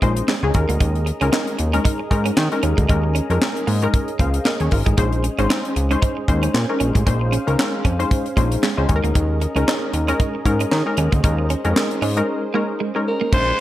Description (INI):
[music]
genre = early-eighties boogie funk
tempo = 115 BPM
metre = 4/4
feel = swing 56% on 16ths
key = unclear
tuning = A4 = 439 Hz
[part]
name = funky polysynth comp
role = accompaniment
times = 0.0-13.6 s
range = Ab3 to F5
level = -23 LUFS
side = left 2 dB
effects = chorus
[part]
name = brassy analog pad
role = sustained chords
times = 0.0-13.6 s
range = Db3 to F5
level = -29 LUFS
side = right 2 dB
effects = chorus
[part]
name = clean electric guitar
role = riff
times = 0.0-13.4 s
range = Ab3 to Eb4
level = -27 LUFS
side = right 6 dB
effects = wide subtle chorus
[part]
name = fat analog bass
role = bass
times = 0.0-13.5 s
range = Ab1 to Eb3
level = -20 LUFS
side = equal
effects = none
[part]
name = tight funk drum kit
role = drums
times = 0.0-13.5 s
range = crash cymbal, handclaps, hi-hat, kick drum, snare drum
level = -20 LUFS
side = equal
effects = gated reverb
[part]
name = growling alto saxophone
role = melody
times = 13.1-13.6 s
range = Bb4 to C5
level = -19 LUFS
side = right 1 dB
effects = none
[sound]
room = light reverb, studio reverb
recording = none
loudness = -17 LUFS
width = side -14 dB against mid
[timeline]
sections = 0.0-13.3 A section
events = break 12.3-13.3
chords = 0.0 Bbm11; 0.5 Eb7sus4; 5.0 Bbm11; 8.9 Eb7sus4